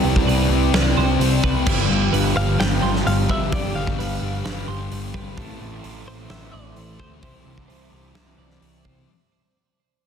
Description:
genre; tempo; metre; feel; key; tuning
rock, shoegaze and dream pop; 130 BPM; 4/4; straight; C major; A4 = 440 Hz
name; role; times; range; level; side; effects
airy breathy pad; sustained chords; 0.0-9.1 s; E4 to D6; -31 LUFS; right 2 dB; chorus
twelve-string electric guitar; arpeggios; 0.0-9.1 s; G4 to C6; -29 LUFS; right 10 dB; analog chorus, digital delay
overdriven semi-hollow guitar; riff; 0.0-9.1 s; G2 to F4; -28 LUFS; right 8 dB; reverse reverb
thick fuzz guitar; riff; 0.0-9.1 s; G2 to C4; -25 LUFS; left 11 dB; distortion, wide subtle chorus
growling picked electric bass; bass; 0.0-9.0 s; G1 to C2; -24 LUFS; equal; overdrive
big rock drum kit; drums; 0.2-9.0 s; crash cymbal, hi-hat, kick drum, snare drum; -24 LUFS; equal; none
direct-recorded clean electric guitar; melody; 2.4-8.6 s; C5 to G5; -28 LUFS; left 2 dB; tremolo, digital delay
room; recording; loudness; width
light reverb, studio reverb; dense, heavily limited modern master; -18 LUFS; side -7 dB against mid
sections
0.0-9.1 A section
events
fade-out 0.0-9.1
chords
0.0 Cmaj7; 1.7 G7; 5.4 Am; 7.2 Cadd9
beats
0.28 0.74 1.20 | 1.67 2.13 2.59 3.06 | 3.52 3.98 4.45 4.91 | 5.37 5.83 6.30 6.76 | 7.22 7.69 8.15 8.62

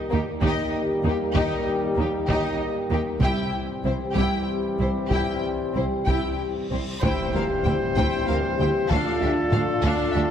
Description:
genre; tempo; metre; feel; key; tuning
cinematic, epic orchestral film score; 64 BPM (dotted quarters); 6/8; straight; unclear; A4 = 441 Hz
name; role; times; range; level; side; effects
mellow trombone section; sustained chords; 0.0-10.3 s; D3 to A3; -32 LUFS; right 3 dB; none
warm French horn section; sustained chords; 0.0-10.3 s; Bb3 to G4; -28 LUFS; left 3 dB; none
warm symphonic violin section; melody; 0.1-10.2 s; G4 to G5; -32 LUFS; left 3 dB; none
warm symphonic violin section; second line; 0.1-10.2 s; Bb3 to C5; -33 LUFS; left 3 dB; none
warm symphonic viola section; accompaniment; 0.1-10.2 s; E3 to E4; -32 LUFS; equal; none
rich symphonic cello section; bass; 0.1-10.2 s; C2 to Eb2; -30 LUFS; right 2 dB; none
rich symphonic double bass section; bass; 0.1-10.2 s; C2 to Eb2; -30 LUFS; right 2 dB; none
taiko ensemble; drums; 0.4-10.3 s; none; -29 LUFS; equal; none
reverse cymbal and impact; sound effects; 6.5-8.9 s; none; -36 LUFS; equal; none
bright trumpet; stabs; 7.0-10.3 s; A4 to C5; -31 LUFS; equal; none
room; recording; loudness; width
wet scoring stage reverb, RT60 1.6 s; heavily compressed radio sound, multiband compression; -21 LUFS; side -9 dB against mid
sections
0.0-7.0 A section; 7.0-10.3 B section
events
reverse cymbal 6.5-7.0; impact 7.0-8.9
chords
0.0 Eb; 3.2 C; 7.0 C/D; 8.9 Dm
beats
0.42 | 1.35 2.28 | 3.21 4.15 | 5.11 6.07 | 7.03 7.97 | 8.90 9.84

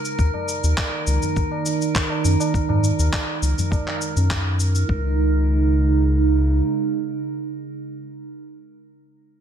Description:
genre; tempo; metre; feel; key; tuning
organic downtempo; 102 BPM; 4/4; straight; unclear; A4 = 440 Hz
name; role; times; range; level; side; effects
warbly tape-like pad; sustained chords; 0.0-8.0 s; C#3 to D#4; -24 LUFS; right 6 dB; chorus, built-in reverb, sidechain pumping
drifting glass-harmonics texture; texture; 0.0-4.9 s; A#4; -31 LUFS; left 3 dB; chorus, built-in reverb
electronic shaker and handclaps; drums; 0.1-4.9 s; none; -27 LUFS; left 2 dB; none
round analog bass; bass; 0.2-6.6 s; C#2 to G#2; -18 LUFS; left 1 dB; sidechain pumping
electronic kick drum; drums; 0.2-5.0 s; none; -23 LUFS; left 1 dB; none
tabla; percussion; 0.3-4.0 s; none; -30 LUFS; left 2 dB; none
room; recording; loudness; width
light reverb, digital ambience; none; -18 LUFS; side -9 dB against mid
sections
0.0-4.9 A section; 4.9-7.2 B section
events
none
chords
0.2 D#m; 4.9 C#5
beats
| 0.18 0.77 1.36 1.95 | 2.54 3.12 3.71 4.30 | 4.89 5.48 6.07 6.65

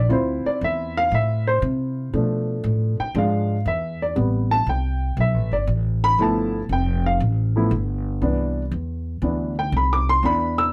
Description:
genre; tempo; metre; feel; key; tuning
jazz, big band swing; 118 BPM; 4/4; swing 69% on 8ths; C major; A4 = 440 Hz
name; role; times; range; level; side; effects
warm upright piano; accompaniment; 0.0-10.7 s; C3 to E6; -24 LUFS; equal; none
upright bass; bass; 0.0-10.7 s; F1 to C3; -25 LUFS; equal; none
room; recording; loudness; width
light reverb; none; -22 LUFS; mono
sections
0.0-10.7 A section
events
upright piano solo 0.0-10.7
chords
0.1 Dm9; 2.1 Bm7b5; 3.2 E7b9; 4.2 Am9; 6.2 G13; 8.2 Cmaj9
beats
| 0.10 0.61 1.12 1.63 | 2.14 2.64 3.15 3.66 | 4.17 4.67 5.18 5.69 | 6.19 6.70 7.21 7.71 | 8.22 8.72 9.23 9.73 | 10.24

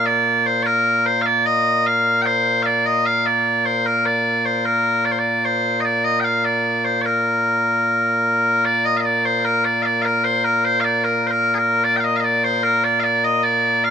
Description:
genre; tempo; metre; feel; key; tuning
scottish traditional, Scottish pipe music; 75 BPM; 2/4; straight; Bb major; A4 = 438 Hz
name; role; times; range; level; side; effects
loud bright bagpipes; solo; 0.0-13.9 s; Bb2 to G5; -16 LUFS; equal; none
room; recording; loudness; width
light reverb; rough home demo mix; -16 LUFS; side -8 dB against mid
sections
0.0-8.6 A section; 8.6-13.9 B section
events
none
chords
none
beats
| 0.65 1.45 | 2.25 3.05 | 3.85 4.65 | 5.45 6.25 | 7.05 7.85 | 8.65 9.45 | 10.25 11.05 | 11.85 12.65 | 13.45

